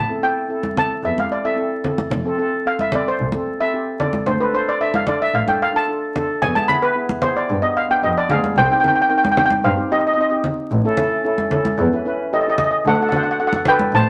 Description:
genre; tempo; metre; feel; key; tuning
calypso; 112 BPM; 4/4; straight; A minor; A4 = 440 Hz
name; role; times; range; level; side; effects
steel pan; melody; 0.0-14.1 s; G4 to B5; -20 LUFS; equal; none
warm double bass; bass; 0.0-14.0 s; F1 to G2; -24 LUFS; equal; none
steel pan; accompaniment; 0.1-14.1 s; B3 to C5; -25 LUFS; equal; none
congas; percussion; 0.6-13.9 s; none; -27 LUFS; equal; none
room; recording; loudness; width
moderate studio reverb, RT60 0.8 s; vinyl crackle; -19 LUFS; mono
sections
0.0-8.6 A section; 8.6-14.1 B section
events
steel pan solo 0.0-8.6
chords
0.0 Am; 2.1 F; 4.3 Dm; 6.4 E; 7.5 G7; 8.6 Cm; 10.7 A7; 12.9 D7

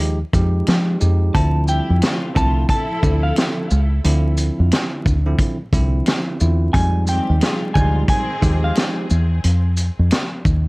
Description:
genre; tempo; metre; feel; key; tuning
hip hop, boom-bap hip-hop; 89 BPM; 4/4; swing 62% on 16ths; D minor; A4 = 441 Hz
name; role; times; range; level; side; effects
bell-like tine electric piano; accompaniment; 0.0-9.1 s; D3 to G4; -24 LUFS; right 2 dB; medium stereo tremolo, high-pass filter, low-pass filter
deep dub fingered electric bass; bass; 0.0-10.7 s; C2 to F3; -16 LUFS; equal; none
vintage drum kit; drums; 0.3-10.6 s; hi-hat, kick drum, shaker, snare drum; -20 LUFS; equal; vintage 12-bit sampler grit
finger snap; percussion; 0.7-10.3 s; none; -33 LUFS; left 3 dB; none
semi-hollow electric guitar; melody; 1.3-8.8 s; F5 to A5; -25 LUFS; equal; high-pass filter, low-pass filter, tape echo
warm studio string section; stabs; 1.7-8.9 s; C3 to A4; -28 LUFS; left 1 dB; high-pass filter, low-pass filter, tape echo
room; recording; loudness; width
little or no reverb; dark, warm production, vinyl crackle; -15 LUFS; side -24 dB against mid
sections
0.0-1.3 A section; 1.3-10.7 A section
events
none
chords
0.0 Fm9; 1.3 Dm9; 6.7 Fm9

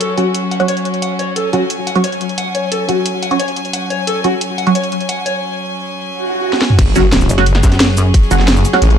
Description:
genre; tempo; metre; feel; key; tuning
dark technical drum and bass; 177 BPM; 4/4; straight; F# minor; A4 = 441 Hz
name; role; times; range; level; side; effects
bright chamber string section; sustained chords; 0.0-9.0 s; F#3 to G#5; -21 LUFS; left 1 dB; sidechain pumping
electric guitar at the edge of break-up; arpeggios; 0.0-5.4 s; F#4 to F#5; -20 LUFS; left 4 dB; wide subtle chorus, sidechain pumping, ping-pong delay
drum and bass drum kit; drums; 0.0-9.0 s; cabasa, crash cymbal, hi-hat, snare drum, toms; -17 LUFS; equal; studio reverb
filtered dub chord stab; stabs; 0.2-4.7, 7.0-8.8 s; F#3 to F#4; -17 LUFS; right 3 dB; phaser, lush chorus, ping-pong delay
swell and impact; sound effects; 6.2-8.1 s; none; -20 LUFS; right 1 dB; none
snarling distorted saw bass; bass; 6.8-9.0 s; F#1 to A1; -12 LUFS; equal; distortion, sidechain pumping
crunchy breakbeat drum kit; drums; 6.8-8.9 s; hi-hat, snare drum; -27 LUFS; equal; none
electronic kick drum; drums; 6.8-8.2 s; none; -11 LUFS; equal; studio reverb
pulsing pluck wobble bass; bass; 7.3-8.1 s; F#1 to F#2; -13 LUFS; equal; chorus
room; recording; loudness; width
light reverb; dark, warm production; -12 LUFS; side -8 dB against mid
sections
0.0-6.8 A section; 6.8-9.0 B section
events
swell 6.2-6.8; drum fill 6.5; drop 6.8-9.0; impact 6.8-8.1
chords
0.0 F#sus2

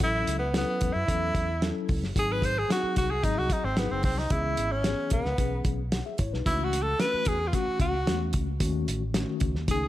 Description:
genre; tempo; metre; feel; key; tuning
uptempo 1960s-style soul; 112 BPM; 4/4; straight; unclear; A4 = 440 Hz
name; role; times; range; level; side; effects
breathy tenor saxophone; melody; 0.0-9.9 s; B3 to B#4; -28 LUFS; equal; slapback echo
mellow tine electric piano; accompaniment; 0.0-9.9 s; D#3 to F#5; -33 LUFS; left 4 dB; medium stereo tremolo
fingered electric bass; bass; 0.0-9.9 s; F#1 to F#2; -31 LUFS; equal; none
cloth-damped thuddy drum kit; drums; 0.0-9.8 s; hi-hat, kick drum, snare drum; -29 LUFS; equal; none
room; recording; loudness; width
studio reverb; none; -25 LUFS; side -14 dB against mid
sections
0.0-9.9 A section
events
tenor saxophone solo 0.0-9.9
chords
0.0 F#m7/A; 2.2 G#7; 4.3 C#m7; 6.5 F#m7/C#; 8.6 D#m7b5

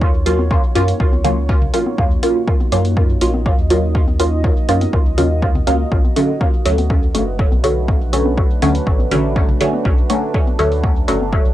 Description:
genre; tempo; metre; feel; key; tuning
dub techno; 122 BPM; 4/4; straight; unclear; A4 = 441 Hz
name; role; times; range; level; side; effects
deep dark ambient pad; sustained chords; 0.0-11.5 s; A3 to Eb5; -25 LUFS; right 2 dB; chorus, built-in reverb, sidechain pumping, cassette tape
soft dub sub bass; bass; 0.0-11.5 s; F#1 to Gb2; -19 LUFS; equal; sidechain pumping
electronic kick drum; drums; 0.0-11.4 s; none; -16 LUFS; equal; overdrive, cassette tape
filtered dub chord stab; stabs; 0.3-11.2 s; D3 to F4; -18 LUFS; equal; phaser, sidechain pumping, cassette tape, dub echo
electronic hi-hat; drums; 0.3-11.2 s; none; -28 LUFS; equal; overdrive, cassette tape
electronic congas and toms; percussion; 0.4-11.3 s; none; -27 LUFS; left 2 dB; sidechain pumping on perc, cassette tape, sidechain pumping on toms, dub echo
room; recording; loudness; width
moderate booth ambience, RT60 0.2 s; home recording on cassette; -13 LUFS; side -13 dB against mid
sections
0.0-11.5 A section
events
none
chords
0.0 Ebm7; 5.9 Bm7

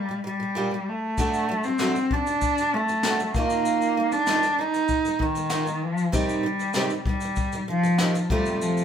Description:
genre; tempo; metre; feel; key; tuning
acoustic pop; 97 BPM; 4/4; straight; unclear; A4 = 440 Hz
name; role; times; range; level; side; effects
warm cello; melody; 0.0-8.8 s; Eb3 to Eb4; -23 LUFS; equal; none
picked steel-string acoustic guitar; accompaniment; 0.0-8.8 s; F2 to G4; -28 LUFS; right 3 dB; none
jazz brush drum kit; drums; 1.2-8.8 s; kick drum, shaker, snare drum; -29 LUFS; left 2 dB; none
room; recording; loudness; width
wet studio reverb, RT60 0.8 s; band playing live in one room; -22 LUFS; side -8 dB against mid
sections
0.0-8.8 A section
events
none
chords
0.0 Gm/Bb; 1.2 D; 3.3 Ebsus2; 6.1 Cm; 8.3 F

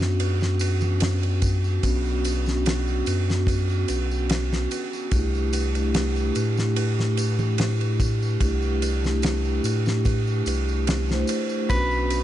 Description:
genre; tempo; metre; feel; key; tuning
trip hop; 73 BPM; 4/4; swing 54% on 16ths; B minor; A4 = 440 Hz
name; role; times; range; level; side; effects
vibraphone with soft mallets; accompaniment; 0.0-12.2 s; A3 to C5; -27 LUFS; equal; harmonic tremolo, tape echo
warm sub bass; bass; 0.0-12.2 s; B1 to A2; -24 LUFS; equal; tube saturation
damped 70s drum kit; drums; 0.0-12.2 s; kick drum, ride cymbal, snare drum; -27 LUFS; equal; studio reverb
tambourine and congas; percussion; 0.2-12.2 s; none; -38 LUFS; right 1 dB; none
clean electric guitar; melody; 11.7-12.2 s; B4; -24 LUFS; right 1 dB; vintage 12-bit sampler grit
room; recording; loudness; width
studio reverb; nothing above 10.4 kHz; -21 LUFS; side -12 dB against mid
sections
0.0-12.2 A section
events
none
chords
0.0 Bmadd9; 5.1 C6; 11.7 Bmadd9

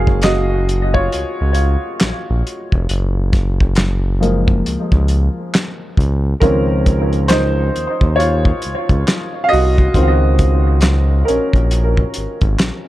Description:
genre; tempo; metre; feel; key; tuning
R&B, neo-soul; 68 BPM; 4/4; swing 62% on 16ths; Db major; A4 = 439 Hz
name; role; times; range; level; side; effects
warm baby grand piano; accompaniment; 0.0-12.9 s; Eb3 to F5; -18 LUFS; equal; tape echo
smooth synth bass; bass; 0.0-12.7 s; F1 to Eb2; -16 LUFS; equal; none
cloth-damped thuddy drum kit; drums; 0.1-12.8 s; handclaps, hi-hat, kick drum, snare drum; -16 LUFS; equal; none
room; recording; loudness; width
small room ambience; echo-heavy mix; -13 LUFS; side -15 dB against mid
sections
0.0-6.4 A section; 6.4-12.9 B section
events
grand piano solo 0.0-6.4, 6.4-12.9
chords
0.0 Gbmaj9; 6.0 N.C.; 6.4 Dbmaj9

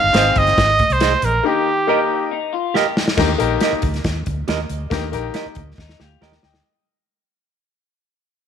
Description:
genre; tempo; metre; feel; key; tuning
uptempo 1960s-style soul; 138 BPM; 4/4; straight; Eb major; A4 = 440 Hz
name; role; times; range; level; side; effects
bright trumpet; melody; 0.0-2.3 s; G4 to F5; -16 LUFS; right 2 dB; none
bright grand piano; accompaniment; 0.0-6.8 s; Ab2 to Bb5; -21 LUFS; left 10 dB; none
vintage muted fingered electric bass; bass; 0.0-6.6 s; G1 to Eb2; -23 LUFS; equal; none
clean electric guitar; stabs; 0.1-6.3 s; G4 to Eb5; -23 LUFS; right 10 dB; spring reverb
natural country drum kit; drums; 0.1-6.6 s; crash cymbal, hi-hat, kick drum, snare drum; -22 LUFS; left 1 dB; none
congas; percussion; 0.1-6.5 s; none; -32 LUFS; right 10 dB; none
electric guitar through a small old amp; riff; 2.3-3.2, 5.8-6.6 s; Eb4 to G4; -24 LUFS; left 10 dB; lush chorus
room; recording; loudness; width
moderate echo chamber reverb, RT60 1.4 s, small room ambience; 1960s-style stereo with parts hard left and right; -16 LUFS; side -8 dB against mid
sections
0.0-3.2 A section; 3.2-6.7 B section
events
break 1.4-3.2; drum fill 2.7-3.2, 5.8-6.7; fade-out 3.2-6.7; grand piano fill 6.0-6.7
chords
0.0 Ab; 1.4 Eb

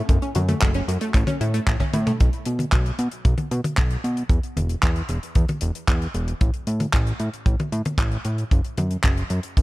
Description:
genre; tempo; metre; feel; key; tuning
italo disco; 114 BPM; 4/4; straight; unclear; A4 = 440 Hz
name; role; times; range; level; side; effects
wide unison pluck; arpeggios; 0.0-2.2 s; A3 to F#4; -28 LUFS; equal; cassette tape, tape echo
fat analog bass; bass; 0.0-9.6 s; E1 to B2; -24 LUFS; equal; tube saturation
kick drum; drums; 0.1-9.6 s; none; -20 LUFS; equal; none
tight funk drum kit; drums; 0.1-9.6 s; handclaps, hi-hat, toms; -27 LUFS; equal; none
room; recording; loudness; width
small room ambience; dark, warm production; -20 LUFS; side -19 dB against mid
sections
0.0-2.2 A section; 2.2-9.6 B section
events
drum fill 1.9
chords
0.1 F#m; 1.1 A; 2.2 N.C.

